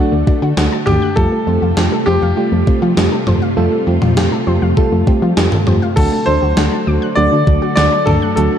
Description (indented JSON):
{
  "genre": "synth-pop",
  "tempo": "100 BPM",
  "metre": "4/4",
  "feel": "straight",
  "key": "unclear",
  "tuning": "A4 = 442 Hz",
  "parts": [
    { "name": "bright grand piano", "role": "melody", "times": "0.0-8.6 s", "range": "G4 to D5", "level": "-18 LUFS", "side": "left 1 dB", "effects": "analog delay" },
    { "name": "mellow FM electric piano", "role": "accompaniment", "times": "0.0-8.6 s", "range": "A3 to A4", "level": "-19 LUFS", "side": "right 2 dB", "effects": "chorus" },
    { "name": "string machine, full ensemble", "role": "sustained chords", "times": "0.0-8.6 s", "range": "C3 to F#5", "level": "-21 LUFS", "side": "equal", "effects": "ensemble chorus" },
    { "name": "analog pluck", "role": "arpeggios", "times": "0.0-8.6 s", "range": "F#3 to F#6", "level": "-24 LUFS", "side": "left 3 dB", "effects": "chorus, analog delay" },
    { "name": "solid FM bass", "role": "bass", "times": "0.1-8.5 s", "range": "D2 to F3", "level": "-16 LUFS", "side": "equal", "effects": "none" },
    { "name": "gated 80s digital drum machine", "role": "drums", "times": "0.3-8.5 s", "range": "crash cymbal, hi-hat, kick drum, snare drum, toms", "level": "-17 LUFS", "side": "equal", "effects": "gated reverb, gated reverb snare, overdrive" }
  ],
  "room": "moderate concert hall reverb, RT60 2.2 s",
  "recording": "dark, warm production",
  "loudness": "-12 LUFS",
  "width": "side -9 dB against mid",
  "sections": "0.0-6.0 A section; 6.0-8.6 B section",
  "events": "none",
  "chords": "0.0 D; 1.2 Fadd9; 6.0 D"
}